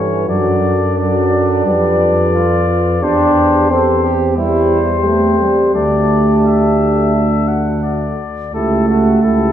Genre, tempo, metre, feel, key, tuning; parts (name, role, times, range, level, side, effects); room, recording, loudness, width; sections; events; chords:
classical, brass quintet; 87 BPM; 4/4; straight; A4 = 442 Hz
mellow trumpet; melody; 0.0-9.5 s; A4 to F#5; -20 LUFS; left 7 dB
mellow flugelhorn; second line; 0.0-9.5 s; C4 to A4; -20 LUFS; right 5 dB
warm French horn; accompaniment; 0.0-9.5 s; F#4 to B4; -20 LUFS; left 2 dB
warm trombone; accompaniment; 0.0-9.5 s; E3 to D4; -16 LUFS; right 2 dB
mellow bass trombone; bass; 0.0-9.5 s; C#2 to G2; -18 LUFS; equal
wet recital hall reverb, RT60 1.8 s; heard from further back in the room; -11 LUFS; side -10 dB against mid
0.0-9.5 A section
0.3 D/F#; 1.7 G7/F; 3.0 C/E; 5.7 Dsus4; 7.1 D; 8.5 A7/C#